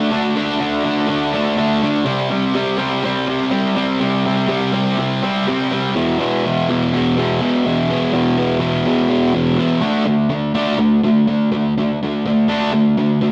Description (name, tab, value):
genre	rock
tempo	124 BPM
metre	4/4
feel	straight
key	unclear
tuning	A4 = 441 Hz
part	fuzz guitar	solo	0.0-13.3 s	E2 to D4	-17 LUFS	equal	distortion
room	moderate stone room reverb, RT60 0.9 s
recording	rough rehearsal-room recording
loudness	-17 LUFS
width	mono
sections	0.0-9.8 A section; 9.8-13.3 B section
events	none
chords	0.0 D5; 2.1 C5; 5.9 E5; 9.8 D5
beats	| 0.12 0.60 1.09 1.57 | 2.06 2.54 3.03 3.51 | 4.00 4.48 4.96 5.45 | 5.93 6.42 6.90 7.39 | 7.87 8.36 8.84 9.33 | 9.81 10.30 10.79 11.27 | 11.76 12.24 12.73 13.22